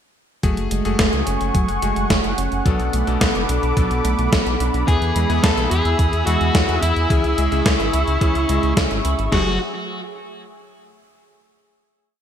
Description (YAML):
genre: synthwave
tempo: 108 BPM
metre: 4/4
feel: straight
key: F# minor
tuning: A4 = 438 Hz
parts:
  - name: lush unison pad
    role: sustained chords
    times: 0.9-9.6 s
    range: G#4 to E6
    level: -25 LUFS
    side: equal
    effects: chorus, sidechain pumping
  - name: clean electric guitar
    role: arpeggios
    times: 0.4-9.6 s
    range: E3 to E4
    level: -27 LUFS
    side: right 5 dB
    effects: analog chorus, low-pass filter, digital delay
  - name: bright electric grand piano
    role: stabs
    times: 0.4-9.5 s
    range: B2 to A4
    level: -27 LUFS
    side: left 5 dB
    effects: digital delay
  - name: round analog bass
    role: bass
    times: 0.4-9.6 s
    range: F#1 to E2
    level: -22 LUFS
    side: equal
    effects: none
  - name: gated 80s digital drum machine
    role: drums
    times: 0.4-9.5 s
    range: crash cymbal, kick drum, snare drum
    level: -20 LUFS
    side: equal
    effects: gated reverb, gated reverb snare
  - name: gated 80s digital drum machine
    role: drums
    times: 0.4-9.3 s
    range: hi-hat, snare drum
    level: -22 LUFS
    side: equal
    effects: gated reverb, gated reverb snare
  - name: fuzz lead guitar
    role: melody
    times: 4.9-9.6 s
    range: E4 to A4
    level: -24 LUFS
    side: left 1 dB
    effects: distortion, digital delay
room: light reverb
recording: bright 1980s-style digital production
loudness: -16 LUFS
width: side -9 dB against mid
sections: 0.4-9.3 verse; 9.3-11.5 final chord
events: filter sweep on clean electric guitar 0.4-9.3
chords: 0.4 F#madd9; 2.7 Bm7; 4.9 E; 7.1 C#m; 9.3 F#madd9